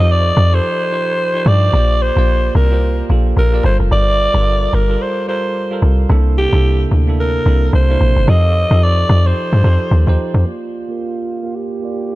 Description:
amapiano; 110 BPM; 4/4; swing 58% on 16ths; Bb major; A4 = 440 Hz
breathy alto saxophone; melody; 0.0-12.2 s; F4 to Eb5; -18 LUFS; equal; low-pass filter, tape echo
bell-like tine electric piano; accompaniment; 0.0-12.2 s; C3 to F5; -22 LUFS; right 3 dB; low-pass filter
deep log drum bass; bass; 0.0-10.4 s; F1 to G2; -12 LUFS; equal
studio reverb; dark, warm production; -12 LUFS; side -18 dB against mid
0.0-10.5 A section; 10.5-12.2 B section
drop 0.0-10.5; filter sweep 10.5-12.2
0.0 F9; 1.7 Bb6; 3.6 Gm9; 6.1 C13; 8.3 F9; 10.5 Bb6
0.10 0.64 1.19 | 1.73 2.28 2.82 3.37 | 3.91 4.46 5.00 5.55 | 6.09 6.64 7.19 7.73 | 8.28 8.82 9.37 9.91 | 10.46 11.00 11.55 12.10

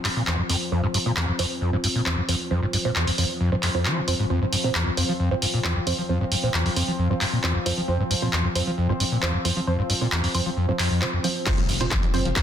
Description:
driving peak-time techno; 134 BPM; 4/4; straight; A4 = 443 Hz
screaming distorted acid line; riff; 0.0-12.4 s; E2 to F3; -24 LUFS; left 1 dB; distortion, analog chorus, sidechain pumping
analog drone; drone; 0.0-12.4 s; F3 to C4; -31 LUFS; left 1 dB; chorus, sidechain pumping
punchy analog drum machine; drums; 0.0-12.4 s; crash cymbal, handclaps, hi-hat; -26 LUFS; equal
filtered dub chord stab; stabs; 0.3-12.4 s; F3 to C5; -30 LUFS; right 4 dB; chorus, sidechain pumping, digital delay
electronic kick drum; drums; 11.5-12.4 s; -24 LUFS; equal; distortion
impact; sound effects; 11.5-12.4 s; -33 LUFS; left 1 dB
gritty driven synth bass; bass; 11.6-12.3 s; F1; -29 LUFS; equal; sidechain pumping
moderate lush hall reverb, RT60 1.6 s; dense, heavily limited modern master; -21 LUFS; side -9 dB against mid
0.0-11.5 A section
filter sweep on synth stab 0.0-11.5; impact 11.5-12.4
0.0 F5
0.27 | 0.72 1.17 1.61 2.06 | 2.51 2.96 3.41 3.85 | 4.30 4.75 5.20 5.64 | 6.09 6.54 6.99 7.44 | 7.88 8.33 8.78 9.23 | 9.67 10.12 10.57 11.02 | 11.46 11.91 12.36

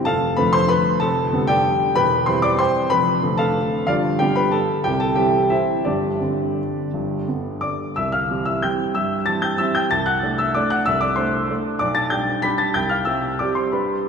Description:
classical, piano waltz; 163-201 BPM; 3/4; rubato; C major; A4 = 440 Hz
warm baby grand piano; solo; 0.0-14.1 s; E1 to B6; -18 LUFS; equal
wet church reverb, RT60 3.8 s; recorded in a church or concert hall; -18 LUFS; side -6 dB against mid
0.0-8.0 A section; 8.0-14.1 B section
0.1 Dm/F; 1.0 G7/F; 2.0 C/E; 2.9 Dm7/F; 3.9 G7; 4.9 C; 5.9 Gsus4; 6.9 G; 8.0 C; 9.9 D7/C; 11.8 G/B; 12.8 C
| 0.06 0.37 0.70 | 1.01 1.33 1.65 | 1.97 2.28 2.60 | 2.92 3.23 3.55 | 3.88 4.20 4.53 | 4.85 5.17 5.51 | 5.86 6.21 6.58 | 6.93 7.28 7.63 | 7.97 8.30 8.63 | 8.96 9.27 9.60 | 9.92 10.24 10.56 | 10.87 11.18 11.50 | 11.81 12.12 12.44 | 12.76 13.07 13.40 | 13.74 14.08

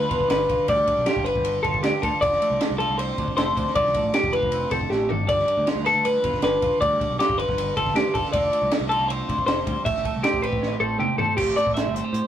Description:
math rock and midwest emo; 157 BPM; 4/4; straight; A4 = 440 Hz
twelve-string electric guitar; accompaniment; 0.0-12.3 s; A2 to C5; -30 LUFS; right 5 dB
twelve-string electric guitar; arpeggios; 0.0-12.3 s; G4 to E5; -22 LUFS; left 1 dB
growling picked electric bass; bass; 0.0-12.2 s; F1 to A2; -31 LUFS; right 1 dB; overdrive
compact cocktail drum kit; drums; 0.1-12.2 s; crash cymbal, hi-hat, kick drum, ride cymbal, snare drum, toms; -28 LUFS; equal
moderate booth ambience, RT60 0.2 s; rough rehearsal-room recording; -20 LUFS; side -10 dB against mid
0.0-11.4 A section
drum fill 4.9-5.3, 10.6-11.4
0.0 G7; 2.2 F6; 5.3 G7; 8.3 F6; 9.9 Am7
0.30 | 0.68 1.07 1.45 1.83 | 2.22 2.60 2.98 3.37 | 3.75 4.13 4.52 4.90 | 5.28 5.67 6.05 6.43 | 6.82 7.20 7.58 7.96 | 8.34 8.72 9.10 9.48 | 9.86 10.24 10.62 11.00 | 11.38 11.76 12.14

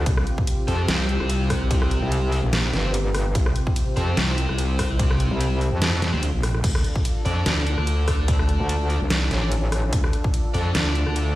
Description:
heavy wobble dubstep; 146 BPM; 4/4; swing 54% on 16ths, half-time; A4 = 439 Hz
lush unison pad; sustained chords; 0.0-11.4 s; C3 to A4; -31 LUFS; left 1 dB; chorus, sidechain pumping
metallic wobble bass; bass; 0.0-10.7 s; G1 to F2; -22 LUFS; equal; chorus, overdrive
wobble bass; bass; 0.1-11.4 s; Bb1 to D2; -22 LUFS; equal; chorus, overdrive
dubstep drum kit; drums; 0.1-11.2 s; crash cymbal, hi-hat, ride cymbal, rim click, snare drum; -27 LUFS; equal
electronic kick drum; drums; 0.1-10.3 s; -23 LUFS; equal
high-gain distorted guitar; stabs; 0.7-11.4 s; C4 to D5; -31 LUFS; right 1 dB; distortion, tape echo
digital ambience; played on a big sound system in a bare room, stone room reverb; -20 LUFS; side -16 dB against mid
0.0-11.4 A section
break 6.2-6.6
0.1 Csus4; 6.6 Dm
| 0.06 0.47 0.89 1.30 | 1.71 2.12 2.53 2.94 | 3.35 3.76 4.17 4.58 | 5.00 5.41 5.82 6.23 | 6.64 7.05 7.46 7.87 | 8.28 8.69 9.10 9.52 | 9.93 10.34 10.75 11.16

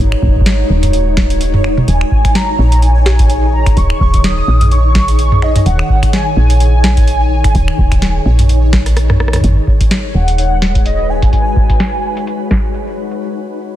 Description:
IDM; 127 BPM; 4/4; swing 56% on 16ths; G# minor; A4 = 440 Hz
glassy FM pad; sustained chords; 0.0-13.2 s; D#3 to C#5; -21 LUFS; left 3 dB; ensemble chorus, built-in reverb
woody FM bass; bass; 0.0-11.3 s; D#1 to A#1; -12 LUFS; equal
electronic kick drum; drums; 0.0-12.6 s; -13 LUFS; equal
pulsing gated texture; texture; 0.0-13.2 s; C#5; -25 LUFS; right 2 dB; chorus, built-in reverb
booming analog drum machine; drums; 0.1-13.2 s; finger snaps, hi-hat, rim click, snare drum, toms; -17 LUFS; equal; low-pass filter on hats, soft clipping on snare, low-pass filter on snare, low-pass filter on toms
warbly nostalgic lead; melody; 1.9-12.7 s; D#5 to D#6; -19 LUFS; equal; ensemble chorus, cassette tape, tape echo
little or no reverb; dense, heavily limited modern master; -10 LUFS; side -13 dB against mid
0.0-9.4 A section; 9.4-13.2 B section
drum fill 8.7-9.4; filter sweep on drum 9.4-13.2
0.0 G#7(no3); 1.9 D#7sus4; 9.4 G#m7
0.46 0.93 1.41 | 1.88 2.35 2.82 3.30 | 3.77 4.24 4.71 5.19 | 5.66 6.13 6.60 7.08 | 7.55 8.02 8.49 8.97 | 9.44 9.91 10.38 10.86 | 11.33 11.80 12.27 12.74

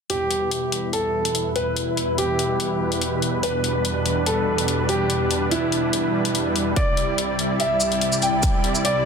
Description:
heavy wobble dubstep; 144 BPM; 4/4; swing 53% on 16ths, half-time; E minor; A4 = 440 Hz
warm concert grand piano; melody; 0.1-9.1 s; E4 to G5; -24 LUFS; equal; ping-pong delay
supersaw chords; sustained chords; 0.1-9.1 s; E2 to D5; -23 LUFS; equal; sidechain pumping, low-pass filter
electronic hi-hat and shaker; drums; 0.1-8.9 s; -27 LUFS; left 3 dB
electronic kick drum; drums; 6.8-8.5 s; -22 LUFS; equal
light reverb; dense, heavily limited modern master; -19 LUFS; side -6 dB against mid
0.1-9.1 A section
filter sweep on supersaw synth 0.1-9.1
0.1 Em; 6.8 Cadd9
| 0.10 0.52 0.93 1.35 | 1.76 2.18 2.60 3.02 | 3.43 3.85 4.26 4.68 | 5.10 5.51 5.93 6.35 | 6.76 7.18 7.60 8.02 | 8.43 8.85

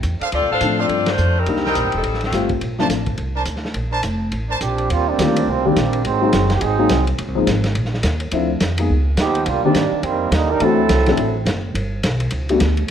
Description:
jazz, big band swing; 210 BPM; 4/4; swing 60% on 8ths; Bb major, Eb major from 4.9 s; A4 = 440 Hz
upright bass; bass; 0.0-12.9 s; Eb1 to A2; -21 LUFS; equal
vintage drum kit; drums; 0.0-12.9 s; hi-hat, kick drum, ride cymbal, snare drum; -25 LUFS; equal
clear trumpet section; stabs; 0.2-4.6 s; D4 to A5; -26 LUFS; right 3 dB
clear saxophone section; melody; 0.3-2.5 s; Eb3 to F5; -20 LUFS; left 3 dB
dark upright piano; accompaniment; 0.6-2.9, 5.2-12.6 s; Eb3 to A4; -20 LUFS; left 4 dB
clear trombone section; second line; 4.6-7.1, 9.2-11.5 s; D3 to Bb4; -19 LUFS; right 5 dB
light reverb; -16 LUFS; side -9 dB against mid
0.0-4.9 A section; 4.9-12.9 B section
band accent 1.0; trombone section solo 4.9-12.9
0.3 Dm7; 1.5 Cm7; 2.0 F9; 2.6 Bbmaj9; 4.9 Eb69; 6.0 Ab7; 7.2 Dbmaj7sus2 (rootless); 8.3 Dm7; 8.9 Db9; 9.5 Cm9; 10.6 D9; 11.8 G
0.04 | 0.33 0.61 0.90 1.19 | 1.47 1.76 2.04 2.33 | 2.62 2.90 3.19 3.47 | 3.76 4.05 4.33 4.62 | 4.90 5.19 5.47 5.76 | 6.05 6.33 6.62 6.90 | 7.19 7.47 7.76 8.04 | 8.33 8.62 8.90 9.19 | 9.47 9.76 10.04 10.33 | 10.62 10.90 11.19 11.47 | 11.76 12.04 12.33 12.62 | 12.90

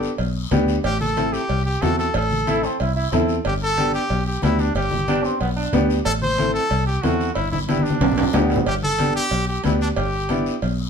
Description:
latin, cumbia; 184 BPM; 4/4; straight; G major; A4 = 440 Hz
brilliant trumpet; melody; 0.0-10.6 s; D4 to C5; -24 LUFS; equal
clear upright piano; accompaniment; 0.0-10.5 s; B3 to A4; -23 LUFS; left 1 dB
fingered electric bass; bass; 0.0-10.9 s; G1 to E2; -23 LUFS; equal
guiro; percussion; 0.0-10.9 s; -37 LUFS; left 6 dB
cowbell and timbales; percussion; 0.2-10.8 s; -27 LUFS; right 4 dB
congas; percussion; 0.5-10.5 s; -26 LUFS; left 1 dB
bright trombone; second line; 2.5-5.9, 8.2-8.7 s; G3 to E4; -26 LUFS; right 4 dB
moderate studio reverb, RT60 0.7 s; band playing live in one room; -18 LUFS; side -6 dB against mid
0.0-8.7 A section; 8.7-10.9 A section
drum fill 7.7-8.7
0.0 G; 0.8 Am; 3.5 G; 6.1 Am; 7.4 G
0.19 0.51 | 0.84 1.17 1.49 1.82 | 2.15 2.47 2.80 3.12 | 3.45 3.78 4.10 4.43 | 4.76 5.08 5.41 5.74 | 6.06 6.39 6.71 7.04 | 7.37 7.69 8.02 8.34 | 8.67 8.99 9.32 9.65 | 9.97 10.30 10.62

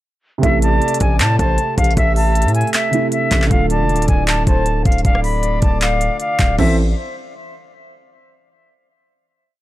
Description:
hip hop, trap; 156 BPM; 4/4; half-time; A minor; A4 = 444 Hz
silver concert flute; melody; 0.4-6.8 s; E5 to B5; -20 LUFS; equal; low-pass filter, digital delay
felt-muted upright piano; accompaniment; 0.4-6.8 s; C3 to A4; -21 LUFS; right 4 dB; low-pass filter
distorted 808-style bass; bass; 0.4-6.9 s; D1 to A2; -18 LUFS; equal; distortion
trap drum kit; drums; 0.4-6.7 s; crash cymbal, handclaps, hi-hat, kick drum, rim click; -18 LUFS; equal
breathy flute-like synth lead; second line; 0.6-6.8 s; C5 to E5; -26 LUFS; left 4 dB; chorus, tremolo, digital delay
little or no reverb; dark, warm production; -13 LUFS; side -15 dB against mid
0.4-6.6 hook; 6.6-8.1 final chord
0.4 Am; 3.5 Dm; 6.6 Am
| 0.43 0.82 1.20 1.58 | 1.97 2.35 2.74 3.12 | 3.51 3.89 4.28 4.66 | 5.05 5.43 5.82 6.20 | 6.58

